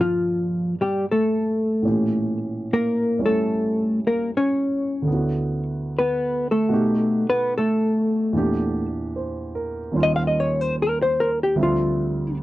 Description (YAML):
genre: jazz ballad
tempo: 74 BPM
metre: 4/4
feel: swing 66% on 8ths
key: unclear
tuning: A4 = 439 Hz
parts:
  - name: hollow-body jazz guitar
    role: melody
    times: 0.0-12.4 s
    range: F3 to F5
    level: -20 LUFS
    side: left 1 dB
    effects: none
  - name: warm concert grand piano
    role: accompaniment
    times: 0.0-12.4 s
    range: D2 to E5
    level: -25 LUFS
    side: right 2 dB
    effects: none
room: moderate booth ambience, RT60 0.2 s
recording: dry, close 1970s-style studio recording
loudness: -20 LUFS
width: side -16 dB against mid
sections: 0.0-12.4 A section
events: hollow-body jazz guitar solo 0.0-12.4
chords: 0.0 Gm9; 1.8 A7b9; 5.1 D69; 6.7 B7b13; 8.3 Em7b5; 10.0 Eb9; 11.6 Dm11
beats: 0.21 1.02 | 1.83 2.64 3.45 4.26 | 5.08 5.89 6.70 7.51 | 8.33 9.14 9.95 10.76 | 11.57 12.39